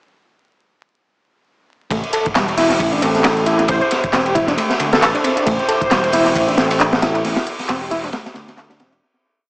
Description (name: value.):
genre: breakbeat, breaks.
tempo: 135 BPM.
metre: 4/4.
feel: swing 57% on 16ths.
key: A minor.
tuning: A4 = 440 Hz.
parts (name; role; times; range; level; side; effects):
reed electric piano; riff; 1.9-9.0 s; G3 to A4; -20 LUFS; equal; fast tremolo, analog delay.
overdriven picked electric bass; bass; 1.9-9.0 s; E1 to D2; -24 LUFS; equal; none.
crunchy breakbeat drum kit; drums; 1.9-9.0 s; hi-hat, kick drum, ride cymbal, snare drum; -19 LUFS; equal; analog delay.
garage drum kit; drums; 1.9-9.0 s; handclaps, hi-hat; -22 LUFS; equal; analog delay.
dark brass ensemble; stabs; 3.0-8.7 s; C4 to C5; -21 LUFS; right 1 dB; analog delay.
glassy wavetable pluck; melody; 3.7-5.1 s; A4 to C5; -22 LUFS; equal; chorus, small speaker sound, analog delay.
room: moderate spring reverb, RT60 2.1 s.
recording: echo-heavy mix, vinyl crackle, small speaker sound.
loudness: -14 LUFS.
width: side -30 dB against mid.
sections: 1.9-9.0 drop.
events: drop 1.9-9.0; fade-out 6.7-9.0.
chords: 1.9 Am7.